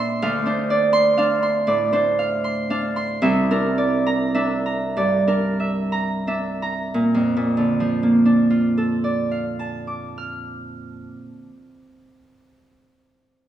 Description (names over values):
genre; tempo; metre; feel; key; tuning
classical, solo harp piece; 43-63 BPM; 3/4; rubato; Bb major; A4 = 439 Hz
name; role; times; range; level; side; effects
Celtic harp; solo; 0.0-12.4 s; C2 to F6; -18 LUFS; right 1 dB; none
room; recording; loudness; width
wet recital hall reverb, RT60 1.4 s; heard from further back in the room; -18 LUFS; side -11 dB against mid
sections
0.0-7.0 A section; 7.0-10.9 B section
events
slowing down 0.0-7.0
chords
0.2 Dm7; 3.2 C9; 7.0 Bbmaj7